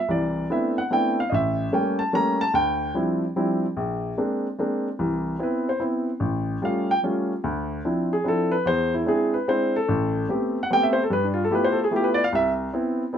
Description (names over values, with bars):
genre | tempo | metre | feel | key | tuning
jazz | 147 BPM | 3/4 | swing 67% on 8ths | C major | A4 = 442 Hz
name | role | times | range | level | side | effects
warm upright piano | solo | 0.0-13.2 s | A1 to Bb5 | -21 LUFS | equal | none
room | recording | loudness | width
moderate club reverb, RT60 0.6 s | close, detailed microphones | -21 LUFS | side -8 dB against mid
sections
0.0-5.0 A section; 5.0-13.2 B section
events
upright piano solo 5.0-13.2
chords
0.1 Cmaj13; 1.3 A7b9; 2.5 Dm11; 3.8 Bb9; 5.0 Cmaj7; 6.2 A7b13; 7.4 Dm9; 8.7 E7b13; 9.9 Am9; 11.1 G13; 12.3 Cmaj7